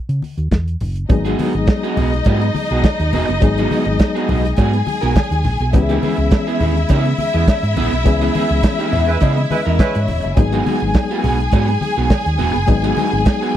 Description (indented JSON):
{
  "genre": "disco",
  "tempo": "104 BPM",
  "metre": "4/4",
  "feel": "straight",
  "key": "G# minor",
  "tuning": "A4 = 439 Hz",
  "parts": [
    { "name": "hollow-body short-scale fingered electric bass", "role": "bass", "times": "0.1-13.2 s", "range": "E1 to C#3", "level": "-18 LUFS", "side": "equal", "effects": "none" },
    { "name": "warm soul drum kit", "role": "drums", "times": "0.1-13.5 s", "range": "hi-hat, kick drum, snare drum", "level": "-14 LUFS", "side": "equal", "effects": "none" },
    { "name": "congas", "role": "percussion", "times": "0.2-13.6 s", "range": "none", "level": "-26 LUFS", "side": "left 3 dB", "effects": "none" },
    { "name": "clear studio string section", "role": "second line", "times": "1.1-13.6 s", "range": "D#4 to G#5", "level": "-22 LUFS", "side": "left 2 dB", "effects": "tape echo" },
    { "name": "electric guitar through a small old amp", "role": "accompaniment", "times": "1.1-13.6 s", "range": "B3 to A#4", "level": "-23 LUFS", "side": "right 8 dB", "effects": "tube saturation" },
    { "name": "reed electric piano", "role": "accompaniment", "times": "1.1-13.6 s", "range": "E3 to E5", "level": "-22 LUFS", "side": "left 5 dB", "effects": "overdrive, fast tremolo" },
    { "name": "cowbell", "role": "percussion", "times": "1.1-13.4 s", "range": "none", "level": "-30 LUFS", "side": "right 22 dB", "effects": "none" },
    { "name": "mellow horn section", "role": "stabs", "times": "9.1-10.0 s", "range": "G#3 to B4", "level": "-21 LUFS", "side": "right 4 dB", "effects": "none" }
  ],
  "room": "little or no reverb",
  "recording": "dry, close 1970s-style studio recording",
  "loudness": "-14 LUFS",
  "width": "side -11 dB against mid",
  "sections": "0.0-1.1 A section; 1.1-13.6 B section",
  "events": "band accent 8.1-10.4; reed electric piano fill 8.6-10.4",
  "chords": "0.0 C#m; 1.1 G#m7; 5.7 C#m7; 10.4 G#m7"
}